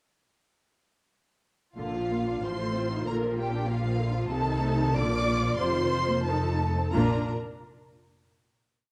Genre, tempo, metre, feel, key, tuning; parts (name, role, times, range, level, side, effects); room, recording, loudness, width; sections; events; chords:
quick classical-period movement for string orchestra; 84-98 BPM; 2/4; rubato; Bb major; A4 = 440 Hz
warm symphonic violin section; melody; 1.8-7.3 s; F5 to D6; -36 LUFS; equal
warm symphonic violin section; second line; 1.8-7.3 s; F4 to D5; -36 LUFS; equal
warm symphonic viola section; accompaniment; 1.8-7.3 s; C3 to F4; -34 LUFS; equal
clear symphonic cello section; bass; 1.8-7.3 s; F2 to C3; -34 LUFS; equal
warm studio double bass section; bass; 1.8-7.3 s; F1 to C2; -34 LUFS; equal
moderate recital hall reverb, RT60 1.5 s; dark, warm production; -28 LUFS; mono
1.8-7.0 theme; 7.0-8.3 final chord
slowing down 3.7-7.0
1.8 Bb; 2.4 F7/A; 3.1 Bb; 4.3 Adim/C; 5.0 Bb; 5.6 F7sus4; 6.3 F7; 7.0 Bb